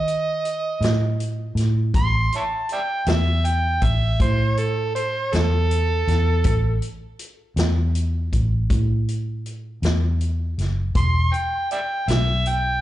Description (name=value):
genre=slow blues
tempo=53 BPM (dotted quarters)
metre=12/8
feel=straight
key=unclear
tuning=A4 = 442 Hz
part: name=overdriven harmonica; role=second line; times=0.0-12.8 s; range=A4 to C6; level=-23 LUFS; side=right 2 dB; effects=slapback echo
part: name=vintage muted fingered electric bass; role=bass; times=0.0-12.8 s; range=E1 to D#3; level=-21 LUFS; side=equal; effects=none
part: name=vintage drum kit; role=drums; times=0.1-12.6 s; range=hi-hat, kick drum, snare drum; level=-25 LUFS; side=equal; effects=none
room=studio reverb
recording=live gig heard through the venue's PA, club reverb, nothing above 10.5 kHz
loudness=-19 LUFS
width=side -14 dB against mid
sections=0.0-12.8 A section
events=harmonica solo 0.0-12.8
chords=0.0 A5; 11.0 E5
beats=0.82 | 1.95 3.08 4.20 5.33 | 6.45 7.58 8.71 9.83 | 10.95 12.08